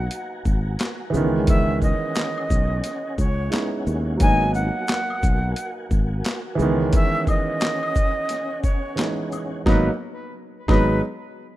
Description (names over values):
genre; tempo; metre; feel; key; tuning
hip hop, boom-bap hip-hop; 88 BPM; 4/4; swing 62% on 16ths; G# minor; A4 = 440 Hz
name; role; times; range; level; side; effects
breathy silver concert flute; melody; 0.0-11.0 s; B4 to G#5; -26 LUFS; equal; tape echo
dark grand piano; accompaniment; 0.0-11.0 s; D#3 to E4; -25 LUFS; right 2 dB; none
mellow tonewheel organ; sustained chords; 0.0-10.0 s; B3 to A#5; -34 LUFS; left 1 dB; chorus vibrato, fast rotary speaker
sustaining fretless electric bass; bass; 0.0-11.0 s; G#1 to D#2; -23 LUFS; equal; none
boom bap sampler-style drum kit; drums; 0.1-10.9 s; handclaps, hi-hat, kick drum, shaker, snare drum; -22 LUFS; equal; none
tube shaker and woodblock; percussion; 0.1-11.0 s; none; -38 LUFS; left 5 dB; none
room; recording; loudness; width
little or no reverb; rough home demo mix; -20 LUFS; side -15 dB against mid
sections
0.0-9.7 A section; 9.7-11.6 B section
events
none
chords
0.0 G#m9; 1.1 C#m9; 4.2 G#m9; 6.6 C#m9; 9.7 G#m9